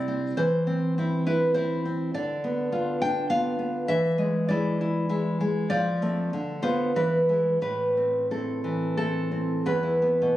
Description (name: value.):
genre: romantic piece for solo classical guitar.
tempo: 80-104 BPM.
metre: 3/4.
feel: rubato.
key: A minor.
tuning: A4 = 440 Hz.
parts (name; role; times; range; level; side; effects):
nylon-string guitar; solo; 0.0-10.4 s; E2 to G5; -23 LUFS; equal; none.
room: moderate recital hall reverb, RT60 1.8 s.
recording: recorded on a phone in the room, club reverb.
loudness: -23 LUFS.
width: side -14 dB against mid.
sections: 0.0-9.7 A section.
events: none.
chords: 0.4 C/E; 2.1 Bdim/D; 3.9 E7; 5.7 F6; 6.3 Bdim/D; 6.9 E; 7.6 Am; 9.7 E5.